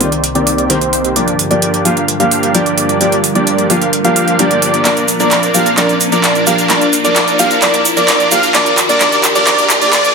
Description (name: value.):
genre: EDM, festival progressive house.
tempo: 130 BPM.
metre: 4/4.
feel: straight.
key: Bb major.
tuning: A4 = 438 Hz.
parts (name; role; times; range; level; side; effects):
dark grand piano; accompaniment; 0.0-10.1 s; Eb3 to Bb4; -19 LUFS; left 3 dB; digital delay.
lush unison pad; sustained chords; 0.0-10.1 s; C2 to C5; -21 LUFS; equal; chorus, phaser.
wide unison lead; arpeggios; 0.0-10.1 s; C5 to F5; -16 LUFS; right 1 dB; digital delay.
supersaw chords; riff; 0.0-10.1 s; Eb3 to F5; -15 LUFS; right 1 dB; low-pass filter, digital delay.
big-room dance drum kit; drums; 0.0-10.1 s; handclaps, hi-hat, shaker; -14 LUFS; right 2 dB; none.
riser; sound effects; 1.0-10.1 s; none; -22 LUFS; equal; none.
room: moderate digital room reverb, RT60 0.9 s.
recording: dense, heavily limited modern master, high-pass filter.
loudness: -9 LUFS.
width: side -5 dB against mid.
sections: 0.0-10.1 A section.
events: build-up 0.0-10.1; filter sweep on supersaw synth 0.0-10.1; filter sweep on analog synth lead 0.0-10.1; riser 1.0-10.1; drum fill 4.9-10.1.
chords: 0.0 Cm7; 1.2 Gm7; 4.9 Bb; 8.5 Eb.